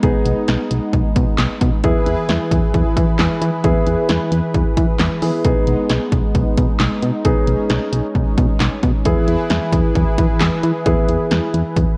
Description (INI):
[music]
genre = synth-pop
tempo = 133 BPM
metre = 4/4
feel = straight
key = unclear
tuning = A4 = 441 Hz
[part]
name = warm baby grand piano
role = accompaniment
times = 0.0-12.0 s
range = B3 to G#4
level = -25 LUFS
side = equal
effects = none
[part]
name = brassy analog pad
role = sustained chords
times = 0.0-12.0 s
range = E3 to B4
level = -25 LUFS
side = equal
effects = chorus
[part]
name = solid FM bass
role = bass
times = 0.0-11.8 s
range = B1 to E3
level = -21 LUFS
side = equal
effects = none
[part]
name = punchy analog drum machine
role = drums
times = 0.0-11.9 s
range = handclaps, hi-hat, kick drum, snare drum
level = -21 LUFS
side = equal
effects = none
[sound]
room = light reverb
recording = worn, warbling old tape, cassette tape, warbly pitch drift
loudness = -17 LUFS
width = mono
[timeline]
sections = 0.0-12.0 A section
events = none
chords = 0.0 B6; 1.8 E; 5.4 B6; 9.1 E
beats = | 0.03 0.48 0.94 1.39 | 1.84 2.29 2.74 3.19 | 3.64 4.09 4.54 5.00 | 5.45 5.90 6.35 6.80 | 7.25 7.70 8.15 8.60 | 9.05 9.51 9.96 10.41 | 10.86 11.31 11.76